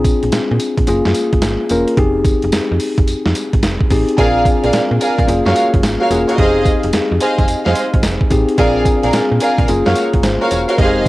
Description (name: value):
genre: R&B, new jack swing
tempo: 109 BPM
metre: 4/4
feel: swing 65% on 16ths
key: unclear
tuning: A4 = 440 Hz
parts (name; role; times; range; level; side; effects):
- bell-like tine electric piano; accompaniment; 0.0-11.1 s; Ab3 to Db5; -17 LUFS; left 2 dB; cassette tape
- slap-like FM bass; bass; 0.0-11.1 s; E1 to Bb2; -20 LUFS; right 1 dB; none
- dusty soul sampler-style drum kit; drums; 0.0-11.1 s; hi-hat, kick drum, snare drum, tambourine; -17 LUFS; right 1 dB; cassette tape
- warm studio string section; stabs; 4.2-11.0 s; Gb4 to F5; -16 LUFS; right 1 dB; cassette tape, tape echo
room: moderate spring reverb, RT60 2.2 s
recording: home recording on cassette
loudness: -12 LUFS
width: side -18 dB against mid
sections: 0.0-11.1 A section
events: none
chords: 0.0 Bb7; 0.9 Gbmaj7; 2.0 Fm7; 4.2 Bb7; 5.3 Gbmaj7; 6.4 Fm7; 8.6 Bb7; 9.7 Gbmaj7